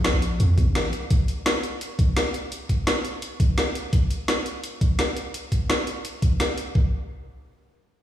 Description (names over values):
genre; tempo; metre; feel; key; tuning
liquid drum and bass; 170 BPM; 4/4; straight; unclear; A4 = 439 Hz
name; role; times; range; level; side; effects
long sustained 808-style bass; bass; 0.0-0.9 s; Ab1 to F2; -21 LUFS; equal; none
drum and bass drum kit; drums; 0.0-6.6 s; hi-hat, snare drum; -26 LUFS; equal; overdrive, studio ambience
electronic kick drum; drums; 0.6-6.8 s; none; -20 LUFS; equal; overdrive, studio ambience
room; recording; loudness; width
moderate lush hall reverb, RT60 2.1 s; played on a big sound system in a bare room, stone room reverb, small room ambience; -21 LUFS; side -12 dB against mid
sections
0.0-6.8 A section; 6.8-8.0 B section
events
none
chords
none